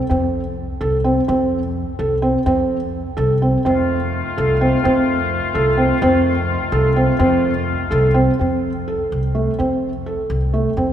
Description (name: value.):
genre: contemporary instrumental, chamber music in an uneven meter.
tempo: 254 BPM (eighths).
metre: 5/8.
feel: straight.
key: F mixolydian.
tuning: A4 = 440 Hz.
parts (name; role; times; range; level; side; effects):
felt-muted upright piano; arpeggios; 0.1-10.9 s; A3 to A4; -18 LUFS; right 1 dB; none.
upright bass; bass; 0.1-10.9 s; C2 to F2; -21 LUFS; equal; none.
clear woodwind section; sustained chords; 3.7-8.4 s; Eb3 to F4; -24 LUFS; left 4 dB; none.
room: wet cathedral reverb, RT60 5.5 s.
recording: recorded in a church or concert hall.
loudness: -16 LUFS.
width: side -10 dB against mid.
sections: 0.0-8.4 A section; 8.4-10.9 B section.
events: none.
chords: 0.0 F7; 8.4 F.